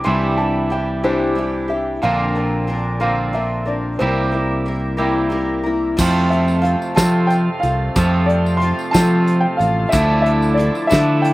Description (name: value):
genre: folk rock and heartland rock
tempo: 61 BPM (dotted quarters)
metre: 6/8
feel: straight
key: C mixolydian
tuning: A4 = 441 Hz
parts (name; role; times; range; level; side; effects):
- dark baby grand piano; melody; 0.0-11.3 s; C5 to C6; -22 LUFS; equal; slapback echo
- picked twelve-string acoustic guitar; accompaniment; 0.0-11.3 s; Bb2 to Bb4; -22 LUFS; left 3 dB; none
- twangy electric guitar; riff; 0.0-11.3 s; F2 to G4; -22 LUFS; right 3 dB; spring reverb, slapback echo
- fingered electric bass; bass; 0.1-11.3 s; A1 to F3; -19 LUFS; equal; none
- tonewheel organ; sustained chords; 6.0-11.3 s; C4 to D5; -31 LUFS; equal; slow rotary speaker
- soft brush drum kit; drums; 6.0-11.3 s; crash cymbal, hi-hat, kick drum, snare drum; -21 LUFS; equal; none
- tambourine; percussion; 6.0-11.3 s; none; -32 LUFS; left 3 dB; none
room: little or no reverb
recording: recorded outdoors, with no room sound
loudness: -15 LUFS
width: side -18 dB against mid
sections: 0.0-6.0 A section; 6.0-11.3 B section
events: none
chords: 0.0 Cadd9; 2.0 Bbadd9; 4.0 C7; 6.0 F; 9.9 Dmadd9